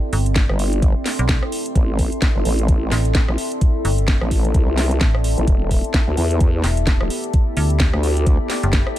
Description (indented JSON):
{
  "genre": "bass house",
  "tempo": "129 BPM",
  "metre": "4/4",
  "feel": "swing 58% on 16ths",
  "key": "A minor",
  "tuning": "A4 = 440 Hz",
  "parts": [
    { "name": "dark analog pad", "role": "sustained chords", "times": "0.0-9.0 s", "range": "B3 to E5", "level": "-28 LUFS", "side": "equal", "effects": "chorus, phaser, sidechain pumping" },
    { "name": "deep dark ambient pad", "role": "texture", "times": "0.0-9.0 s", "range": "A4 to C6", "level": "-29 LUFS", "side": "left 2 dB", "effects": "chorus, built-in reverb, sidechain pumping" },
    { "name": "metallic FM bass", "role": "bass", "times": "0.1-8.8 s", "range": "E1 to D2", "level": "-19 LUFS", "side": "equal", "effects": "sidechain pumping" },
    { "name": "garage drum kit", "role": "drums", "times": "0.1-9.0 s", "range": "hi-hat, rim click, snare drum", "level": "-24 LUFS", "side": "equal", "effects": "small room ambience" },
    { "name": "electronic kick drum", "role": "drums", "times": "0.4-8.8 s", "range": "none", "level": "-17 LUFS", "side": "equal", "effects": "small room ambience" },
    { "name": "vowel-sweep wobble bass", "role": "bass", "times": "0.5-8.4 s", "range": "E1 to E2", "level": "-19 LUFS", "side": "equal", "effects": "chorus, overdrive, sidechain pumping" }
  ],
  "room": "little or no reverb",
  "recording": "none",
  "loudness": "-16 LUFS",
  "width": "side -13 dB against mid",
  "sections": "0.0-9.0 A section",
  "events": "none",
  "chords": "0.0 Am; 5.5 Em",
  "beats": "0.36 0.82 1.29 | 1.75 2.22 2.68 3.15 | 3.61 4.08 4.54 5.01 | 5.47 5.94 6.41 6.87 | 7.33 7.80 8.27 8.73"
}